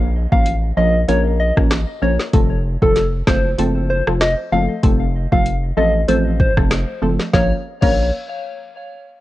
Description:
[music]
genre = dancehall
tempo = 96 BPM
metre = 4/4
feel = swing 56% on 16ths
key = Bb harmonic minor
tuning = A4 = 442 Hz
[part]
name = punchy chord stab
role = accompaniment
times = 0.0-8.1 s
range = F3 to Bb4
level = -21 LUFS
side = right 1 dB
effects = chorus, phaser
[part]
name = round analog bass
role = bass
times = 0.0-8.1 s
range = F1 to Bb1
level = -19 LUFS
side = equal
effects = none
[part]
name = downlifter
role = sound effects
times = 0.0-2.3 s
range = none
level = -45 LUFS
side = equal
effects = none
[part]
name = soft struck synth lead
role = melody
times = 0.3-8.1 s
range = A4 to F5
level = -21 LUFS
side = left 1 dB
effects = chorus, tremolo, ping-pong delay
[part]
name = afro-pop drum kit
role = drums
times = 0.3-8.0 s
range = crash cymbal, hi-hat, kick drum, rim click, snare drum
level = -17 LUFS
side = equal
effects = vintage 12-bit sampler grit
[part]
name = glassy synth bell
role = second line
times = 7.3-8.1 s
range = F5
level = -29 LUFS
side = left 2 dB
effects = chorus, tremolo, ping-pong delay
[sound]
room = little or no reverb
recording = worn, warbling old tape, cassette tape, warbly pitch drift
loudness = -14 LUFS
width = side -16 dB against mid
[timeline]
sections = 0.0-7.3 A section; 7.3-9.2 B section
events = none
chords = 0.0 Bbm; 2.3 F; 7.3 Bbm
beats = 0.46 1.08 1.71 | 2.33 2.96 3.58 4.21 | 4.83 5.46 6.08 6.71 | 7.33 7.96

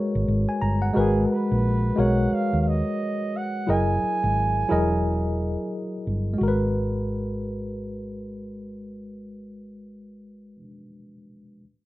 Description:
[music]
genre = R&B, neo-soul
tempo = 88 BPM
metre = 4/4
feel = swing 62% on 16ths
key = G# minor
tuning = A4 = 440 Hz
[part]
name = tine electric piano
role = accompaniment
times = 0.0-11.6 s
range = F#3 to A#5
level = -26 LUFS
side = left 1 dB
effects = overdrive, medium stereo tremolo
[part]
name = hollow-body short-scale fingered electric bass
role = bass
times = 0.2-10.6 s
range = E1 to D#2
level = -25 LUFS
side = equal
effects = none
[part]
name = mellow flugelhorn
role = melody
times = 1.0-5.7 s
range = G#4 to G#5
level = -28 LUFS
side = right 4 dB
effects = plate reverb
[sound]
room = moderate small room reverb, RT60 0.5 s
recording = rough home demo mix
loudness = -21 LUFS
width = side -17 dB against mid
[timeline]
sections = 0.9-6.4 A section; 6.4-9.1 B section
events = none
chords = 0.0 G#m9; 3.7 F#13; 6.4 G#m9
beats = 0.27 | 0.95 1.63 2.31 2.99 | 3.67 4.36 5.04 5.72 | 6.40 7.08 7.76 8.45

